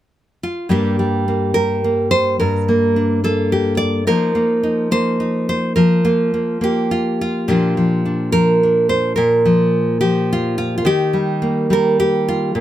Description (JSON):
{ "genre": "folk, solo fingerstyle acoustic guitar", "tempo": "106 BPM", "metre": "3/4", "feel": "rubato", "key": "unclear", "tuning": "A4 = 438 Hz", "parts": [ { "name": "nylon-string guitar", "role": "solo", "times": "0.4-12.6 s", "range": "G2 to D5", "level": "-14 LUFS", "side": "equal", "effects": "none" } ], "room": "little or no reverb", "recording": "close, detailed microphones", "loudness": "-14 LUFS", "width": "side -12 dB against mid", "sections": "0.7-12.6 A section", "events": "none", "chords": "0.0 N.C.; 0.7 Gm; 4.1 F7sus4; 7.5 Bb; 10.9 Eb" }